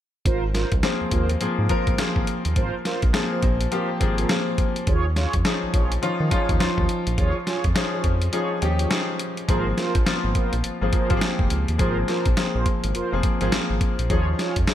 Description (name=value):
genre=R&B, new jack swing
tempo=104 BPM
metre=4/4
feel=swing 61% on 16ths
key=Ab major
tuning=A4 = 441 Hz
part: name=mellow synth brass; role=stabs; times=0.3-14.6 s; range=F4 to Db5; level=-30 LUFS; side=right 4 dB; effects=chorus
part: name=round analog bass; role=bass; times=0.3-14.7 s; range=F1 to Eb3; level=-24 LUFS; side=equal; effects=none
part: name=boom bap sampler-style drum kit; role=drums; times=0.3-14.7 s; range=hi-hat, kick drum, snare drum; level=-24 LUFS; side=equal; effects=none
part: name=clear grand piano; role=accompaniment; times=0.8-14.7 s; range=F3 to Bb4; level=-25 LUFS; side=left 2 dB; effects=analog chorus
room=light reverb, digital ambience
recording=bright 1980s-style digital production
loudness=-20 LUFS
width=side -11 dB against mid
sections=0.3-9.5 A section; 9.5-14.7 B section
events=kick muted 8.3-9.5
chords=0.3 Ab69; 4.9 Eb9sus4; 9.5 Ab69; 14.1 Eb9sus4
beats=| 0.26 0.83 1.41 1.99 | 2.56 3.14 3.72 4.29 | 4.87 5.45 6.02 6.60 | 7.18 7.75 8.33 8.91 | 9.49 10.06 10.64 11.22 | 11.79 12.37 12.95 13.52 | 14.10 14.68